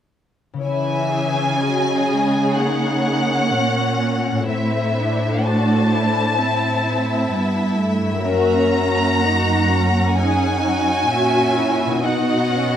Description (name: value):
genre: cinematic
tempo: 63 BPM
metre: 4/4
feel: rubato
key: unclear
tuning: A4 = 440 Hz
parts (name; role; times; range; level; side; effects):
- concert harp; arpeggios; 0.5-12.8 s; F#2 to E5; -26 LUFS; left 6 dB; none
- warm studio violin section; melody; 0.7-12.8 s; E5 to A#5; -22 LUFS; left 2 dB; none
- dark studio violin section; second line; 0.7-12.8 s; C#4 to F#5; -25 LUFS; left 1 dB; none
- dark studio viola section; accompaniment; 0.7-12.8 s; E3 to F#4; -22 LUFS; right 2 dB; none
- warm studio cello section; bass; 0.7-12.8 s; F#2 to C#3; -22 LUFS; right 1 dB; none
room: light reverb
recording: close, detailed microphones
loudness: -16 LUFS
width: side -9 dB against mid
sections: 0.7-12.8 A section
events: none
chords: 0.7 C#m; 4.5 Am; 8.3 F#; 12.0 B